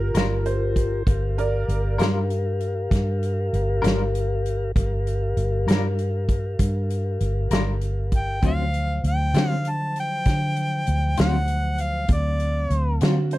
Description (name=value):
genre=slow blues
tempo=65 BPM (dotted quarters)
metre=12/8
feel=straight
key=G minor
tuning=A4 = 440 Hz
part: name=clear upright piano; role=second line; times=0.0-2.0, 13.0-13.4 s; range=F#4 to D5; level=-30 LUFS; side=right 5 dB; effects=none
part: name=mellow tonewheel organ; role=sustained chords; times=0.0-13.4 s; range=E#3 to F5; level=-30 LUFS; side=left 2 dB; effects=slow rotary speaker
part: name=vintage muted fingered electric bass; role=bass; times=0.0-13.4 s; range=G1 to D3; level=-23 LUFS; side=equal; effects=none
part: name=clean electric guitar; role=accompaniment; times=0.1-13.2 s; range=D3 to Bb4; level=-27 LUFS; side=left 4 dB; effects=tremolo
part: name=natural country drum kit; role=drums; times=0.1-13.4 s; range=hi-hat, kick drum, snare drum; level=-24 LUFS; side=equal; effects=none
part: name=clear harmonica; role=melody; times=8.2-13.0 s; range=D5 to A5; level=-27 LUFS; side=equal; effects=overdrive
room=little or no reverb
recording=none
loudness=-20 LUFS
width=side -17 dB against mid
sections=0.0-13.4 A section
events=none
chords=0.0 Gm7; 8.4 D7#9